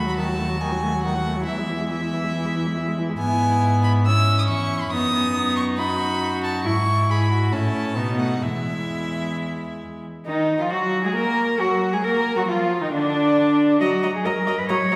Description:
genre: quick classical-period movement for string quartet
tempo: 137 BPM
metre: 4/4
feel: rubato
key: E major, Eb minor from 10.3 s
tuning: A4 = 441 Hz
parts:
  - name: warm violin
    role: melody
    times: 0.0-15.0 s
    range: D4 to E6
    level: -29 LUFS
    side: equal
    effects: none
  - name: dark violin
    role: second line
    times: 0.0-15.0 s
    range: D4 to Eb5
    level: -31 LUFS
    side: equal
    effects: none
  - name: warm viola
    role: accompaniment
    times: 0.0-15.0 s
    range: D3 to E4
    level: -28 LUFS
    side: equal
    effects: none
  - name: rich cello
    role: bass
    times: 0.0-15.0 s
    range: D#2 to Db5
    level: -25 LUFS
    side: equal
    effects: none
room: wet recital hall reverb, RT60 1.7 s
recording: recorded in a church or concert hall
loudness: -22 LUFS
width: mono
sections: 0.0-10.3 A section; 10.3-15.0 B section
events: none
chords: 0.0 D#dim; 1.5 E; 3.2 E/G#; 4.9 B/F#; 6.6 E/G#; 7.5 A; 8.0 B7; 8.4 E; 10.3 Ebm; 12.0 Bb; 13.8 Ebm/Gb

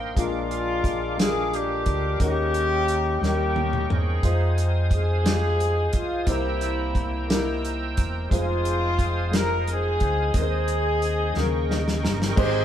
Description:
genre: slow gospel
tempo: 59 BPM (dotted quarters)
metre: 6/8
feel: straight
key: unclear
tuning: A4 = 439 Hz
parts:
  - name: warm concert grand piano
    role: accompaniment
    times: 0.0-12.6 s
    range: Ab2 to Bb5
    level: -29 LUFS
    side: left 2 dB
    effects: none
  - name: bright tonewheel organ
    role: sustained chords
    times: 0.0-12.6 s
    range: Ab3 to E6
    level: -34 LUFS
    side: right 2 dB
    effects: fast rotary speaker, overdrive, chorus vibrato
  - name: fingered electric bass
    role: bass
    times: 0.0-12.6 s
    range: E1 to F2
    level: -26 LUFS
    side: equal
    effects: none
  - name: clear horn section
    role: melody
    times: 0.2-12.0 s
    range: G3 to Bb4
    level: -26 LUFS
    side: left 1 dB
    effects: none
  - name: warm soul drum kit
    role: drums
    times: 0.2-12.5 s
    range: crash cymbal, hi-hat, kick drum, snare drum, toms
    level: -26 LUFS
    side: equal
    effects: none
room: moderate stone room reverb, RT60 1.2 s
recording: band playing live in one room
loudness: -21 LUFS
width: side -10 dB against mid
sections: 0.0-12.4 A section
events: grand piano fill 0.0, 11.4-12.4; drum fill 3.2-4.2, 11.4-12.4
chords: 0.2 Bb7; 2.2 Eb7sus4; 3.2 Eb7; 4.2 Fm7; 6.3 C7; 8.3 Fm7; 10.3 Ab/Eb; 11.4 Eb7

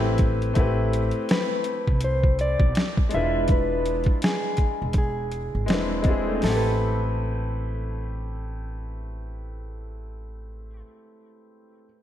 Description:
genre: lo-fi hip hop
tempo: 82 BPM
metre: 4/4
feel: swing 58% on 16ths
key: A minor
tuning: A4 = 440 Hz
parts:
  - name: bright upright piano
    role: accompaniment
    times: 0.0-11.9 s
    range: G#3 to B4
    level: -29 LUFS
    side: left 2 dB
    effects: low-pass filter
  - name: upright bass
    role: bass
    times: 0.0-10.8 s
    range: E1 to C2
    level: -28 LUFS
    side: equal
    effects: none
  - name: boom bap sampler-style drum kit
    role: drums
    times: 0.2-6.6 s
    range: hi-hat, kick drum, snare drum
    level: -23 LUFS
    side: equal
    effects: none
  - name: mellow electric guitar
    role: melody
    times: 1.3-10.8 s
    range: G#4 to E5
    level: -28 LUFS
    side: left 1 dB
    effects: low-pass filter, ping-pong delay
room: moderate lush hall reverb, RT60 1.6 s, studio reverb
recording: dreamy mix soaked in reverb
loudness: -21 LUFS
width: side -11 dB against mid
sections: 0.6-6.4 A section; 6.4-9.3 B section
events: none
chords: 0.0 Am9; 3.1 E7b9; 5.7 E7b13; 6.4 Am9

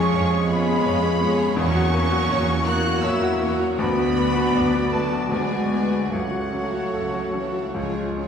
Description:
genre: classical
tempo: 71-86 BPM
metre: 3/4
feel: rubato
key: unclear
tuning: A4 = 440 Hz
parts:
  - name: clear grand piano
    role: melody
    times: 0.0-8.3 s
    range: C#2 to D5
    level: -25 LUFS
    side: left 2 dB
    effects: none
  - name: rich studio violin section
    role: melody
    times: 0.0-7.7 s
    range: F#5 to F#6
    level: -32 LUFS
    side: left 1 dB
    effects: none
  - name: bright symphonic violin section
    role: second line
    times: 0.0-8.3 s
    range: E#4 to C#5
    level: -34 LUFS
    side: left 1 dB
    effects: none
  - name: clear clarinet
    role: second line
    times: 0.0-8.2 s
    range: E#4 to G#4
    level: -32 LUFS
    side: left 3 dB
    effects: none
  - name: clear oboe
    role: second line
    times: 0.0-8.2 s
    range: C#5 to D5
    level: -35 LUFS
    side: right 2 dB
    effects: none
  - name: mellow flute section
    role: second line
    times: 0.0-7.7 s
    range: F#5 to F#6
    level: -30 LUFS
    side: right 2 dB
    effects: none
  - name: clear symphonic viola section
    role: accompaniment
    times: 0.0-8.3 s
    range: E3 to F#4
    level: -32 LUFS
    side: right 2 dB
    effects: none
  - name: warm bassoon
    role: accompaniment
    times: 0.0-8.2 s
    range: G#3 to B3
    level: -32 LUFS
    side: equal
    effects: none
  - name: mellow French horn section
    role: sustained chords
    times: 0.0-8.2 s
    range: G#3 to G#4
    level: -30 LUFS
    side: left 2 dB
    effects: none
  - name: rich symphonic cello section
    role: bass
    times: 0.0-7.7 s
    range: F#3 to F#4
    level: -27 LUFS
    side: left 1 dB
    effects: none
  - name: rich symphonic double bass section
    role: bass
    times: 0.0-8.3 s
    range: C#2 to E#2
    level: -27 LUFS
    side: right 3 dB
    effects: none
room: wet scoring stage reverb, RT60 1.7 s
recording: heard from further back in the room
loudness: -19 LUFS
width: side -7 dB against mid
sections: 0.0-8.3 A section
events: none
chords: 0.0 C#/E#; 1.6 F#7/E; 3.8 Bm/D; 5.3 G#m7b5/D; 6.1 F#m/C#; 7.8 C#

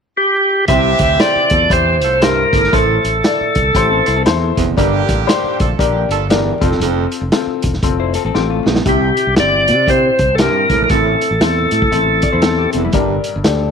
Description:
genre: uptempo 1960s-style soul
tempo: 118 BPM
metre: 4/4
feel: swing 61% on 8ths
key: C mixolydian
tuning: A4 = 440 Hz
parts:
  - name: bright tonewheel organ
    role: melody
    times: 0.2-4.2, 8.9-12.7 s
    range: G4 to E5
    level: -14 LUFS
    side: equal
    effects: slow rotary speaker
  - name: clear horn section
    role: second line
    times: 0.7-6.3 s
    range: D3 to A4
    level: -21 LUFS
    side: right 12 dB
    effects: none
  - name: warm concert grand piano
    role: accompaniment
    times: 0.7-13.7 s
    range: G2 to D5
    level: -20 LUFS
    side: left 11 dB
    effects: none
  - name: breathy baritone saxophone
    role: riff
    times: 0.7-13.2 s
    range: E2 to C3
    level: -20 LUFS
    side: right 12 dB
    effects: none
  - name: fretless electric bass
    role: bass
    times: 0.7-13.7 s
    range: E1 to C3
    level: -19 LUFS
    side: equal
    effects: lush chorus
  - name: vintage drum kit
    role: drums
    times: 0.7-13.6 s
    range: hi-hat, kick drum, snare drum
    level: -18 LUFS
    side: equal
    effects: none
  - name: hollow-body jazz guitar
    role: riff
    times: 3.7-4.7, 8.0-8.8, 12.2-13.1 s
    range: G3 to D5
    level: -22 LUFS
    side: left 14 dB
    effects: none
room: moderate spring reverb, RT60 1.5 s, small room ambience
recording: 1960s-style stereo with parts hard left and right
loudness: -12 LUFS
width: side -6 dB against mid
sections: 0.7-8.9 A section; 8.9-13.7 B section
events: drum fill 8.3-8.9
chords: 0.0 N.C.; 0.7 C; 2.7 Am; 4.8 Gm; 6.6 F; 8.9 C; 10.9 Am; 12.9 Gm

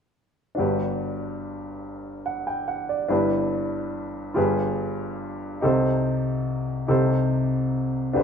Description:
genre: gospel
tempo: 48 BPM (dotted quarters)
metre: 6/8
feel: straight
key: G major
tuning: A4 = 440 Hz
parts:
  - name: clear baby grand piano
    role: solo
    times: 0.5-8.2 s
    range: G1 to G5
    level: -23 LUFS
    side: equal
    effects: none
room: moderate large studio reverb, RT60 1.2 s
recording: band playing live in one room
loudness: -23 LUFS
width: side -7 dB against mid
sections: 0.6-8.2 A section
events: none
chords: 0.6 Gmaj7; 3.1 Em7/G; 4.4 G7b9; 5.6 Cm6

